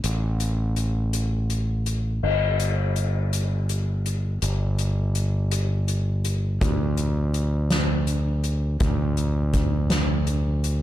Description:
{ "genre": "post-rock", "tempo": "55 BPM (dotted quarters)", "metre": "6/8", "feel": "straight", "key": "unclear", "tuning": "A4 = 440 Hz", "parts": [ { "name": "growling fingered electric bass", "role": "bass", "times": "0.0-10.8 s", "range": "G1 to D2", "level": "-22 LUFS", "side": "equal", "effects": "overdrive" }, { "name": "soft-mallet drum kit", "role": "drums", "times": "0.0-10.8 s", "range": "crash cymbal, hi-hat, kick drum, snare drum", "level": "-27 LUFS", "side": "left 1 dB", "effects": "none" } ], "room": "little or no reverb", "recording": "dark, warm production", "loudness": "-22 LUFS", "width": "side -13 dB against mid", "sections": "0.0-2.2 A section; 2.2-10.8 B section", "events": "none", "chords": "none" }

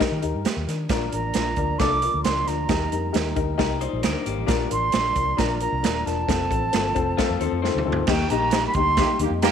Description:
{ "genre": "uptempo 1960s-style soul", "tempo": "134 BPM", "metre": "4/4", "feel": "straight", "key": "Bb major", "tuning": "A4 = 441 Hz", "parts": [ { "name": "dark upright piano", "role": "accompaniment", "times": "0.0-9.5 s", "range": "Bb3 to D5", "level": "-26 LUFS", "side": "left 11 dB", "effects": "none" }, { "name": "swinging big-band drum kit", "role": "drums", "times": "0.0-9.5 s", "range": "crash cymbal, hi-hat, kick drum, snare drum, toms", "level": "-25 LUFS", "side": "right 4 dB", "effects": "none" }, { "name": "vintage muted fingered electric bass", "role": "bass", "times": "0.1-9.5 s", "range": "Eb1 to Eb3", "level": "-28 LUFS", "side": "equal", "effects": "none" }, { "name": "percussive tonewheel organ", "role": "sustained chords", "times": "0.9-9.5 s", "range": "F3 to Eb4", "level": "-35 LUFS", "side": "right 12 dB", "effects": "chorus vibrato, fast rotary speaker" }, { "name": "concert flute", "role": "melody", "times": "1.1-9.5 s", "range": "G5 to D6", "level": "-25 LUFS", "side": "right 3 dB", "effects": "none" }, { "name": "electric guitar through a small old amp", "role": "riff", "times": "3.8-8.1 s", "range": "A3 to C5", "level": "-30 LUFS", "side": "left 11 dB", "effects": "none" }, { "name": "warm horn section", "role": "second line", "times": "9.0-9.5 s", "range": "Eb3 to G4", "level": "-26 LUFS", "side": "right 13 dB", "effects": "none" } ], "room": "light reverb, small room ambience", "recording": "1960s-style stereo with parts hard left and right", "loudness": "-20 LUFS", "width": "side -8 dB against mid", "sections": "0.0-8.1 A section; 8.1-9.5 B section", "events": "drum fill 7.6-8.1", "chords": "0.0 Eb; 0.9 Bb; 2.7 Eb; 4.5 Bb; 6.3 F; 8.1 Eb" }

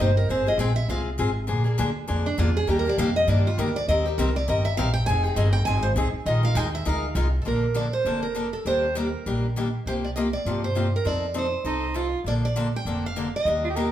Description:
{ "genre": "acoustic string swing (jazz manouche)", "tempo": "201 BPM", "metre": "4/4", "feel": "swing 57% on 8ths", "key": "Bb major from 7.5 s", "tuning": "A4 = 440 Hz", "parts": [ { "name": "picked steel-string acoustic guitar", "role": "melody", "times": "0.0-13.9 s", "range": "D4 to Ab5", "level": "-26 LUFS", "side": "right 2 dB", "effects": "none" }, { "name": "picked steel-string acoustic guitar", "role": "accompaniment", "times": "0.0-13.9 s", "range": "C3 to Bb4", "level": "-28 LUFS", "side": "left 3 dB", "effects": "none" }, { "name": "upright bass", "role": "bass", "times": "0.0-13.9 s", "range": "F1 to G2", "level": "-25 LUFS", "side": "equal", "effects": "none" }, { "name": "growling soprano saxophone", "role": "second line", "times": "11.7-13.9 s", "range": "Eb4 to Bb4", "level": "-29 LUFS", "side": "right 4 dB", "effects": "none" } ], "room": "wet large studio reverb, RT60 0.9 s", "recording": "band playing live in one room", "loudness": "-22 LUFS", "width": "side -12 dB against mid", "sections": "0.0-7.5 A section; 7.5-13.9 B section", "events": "steel-string acoustic guitar solo 0.0-7.5", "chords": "0.3 Ab6; 1.5 Bb7; 2.7 Ebmaj7; 3.9 Cm7; 5.1 Fm9; 6.3 Bb7sus4; 7.5 Bbmaj7; 8.7 Ebmaj7; 9.9 C7sus4; 11.1 F7; 12.3 Bbmaj7" }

